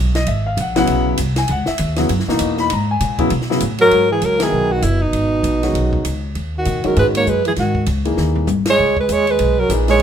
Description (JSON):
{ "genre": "modal jazz", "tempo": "197 BPM", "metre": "4/4", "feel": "swing 60% on 8ths", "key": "G# minor", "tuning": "A4 = 440 Hz", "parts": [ { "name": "upright bass", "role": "bass", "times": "0.0-10.0 s", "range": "F#1 to B2", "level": "-20 LUFS", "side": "equal", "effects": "none" }, { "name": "compact cocktail drum kit", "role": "drums", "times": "0.1-10.0 s", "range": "hi-hat, kick drum, ride cymbal, snare drum, toms", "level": "-25 LUFS", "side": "left 1 dB", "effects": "none" }, { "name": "warm concert grand piano", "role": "accompaniment", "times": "0.2-10.0 s", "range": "A#2 to B5", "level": "-20 LUFS", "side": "left 3 dB", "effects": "none" }, { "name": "breathy alto saxophone", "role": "melody", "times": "3.8-10.0 s", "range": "D#4 to C#5", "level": "-17 LUFS", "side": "equal", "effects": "none" }, { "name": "breathy trombone", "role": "second line", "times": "3.8-10.0 s", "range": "B2 to A#3", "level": "-21 LUFS", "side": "right 6 dB", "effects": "none" } ], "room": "light reverb", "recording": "minimal, uncompressed stereo recording", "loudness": "-14 LUFS", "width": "side -8 dB against mid", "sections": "0.0-3.9 A section; 3.9-10.0 B section", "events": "band accent 4.4, 8.6; drum fill 8.2-8.8", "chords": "0.0 C#m9; 3.9 G#m9; 8.8 C#7sus2" }